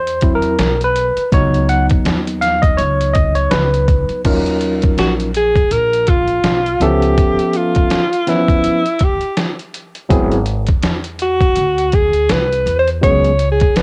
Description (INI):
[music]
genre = hip hop, jazz-hop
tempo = 82 BPM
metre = 4/4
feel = swing 58% on 16ths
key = unclear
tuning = A4 = 441 Hz
[part]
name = barky tine electric piano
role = accompaniment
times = 0.0-13.3 s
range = E3 to Gb5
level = -19 LUFS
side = equal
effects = overdrive, cassette tape
[part]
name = upright bass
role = bass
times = 0.0-13.8 s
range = Ab1 to E2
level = -22 LUFS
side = equal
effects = none
[part]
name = trip hop sampler-style drum kit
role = drums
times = 0.1-13.8 s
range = crash cymbal, hi-hat, kick drum, snare drum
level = -19 LUFS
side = equal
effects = cassette tape
[part]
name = warm alto saxophone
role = melody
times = 5.0-13.8 s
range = E4 to Db5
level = -17 LUFS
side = equal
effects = cassette tape
[sound]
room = light reverb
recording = home recording on cassette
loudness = -15 LUFS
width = mono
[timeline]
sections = 0.0-4.3 A section; 4.3-13.8 A section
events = tine electric piano solo 0.0-4.3; alto saxophone solo 4.3-13.8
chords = 0.0 Ab7#9b13 (rootless); 1.3 Db7sus4; 4.3 Ebm9; 6.8 Db7alt; 10.1 Ab7b13; 13.0 Db7sus4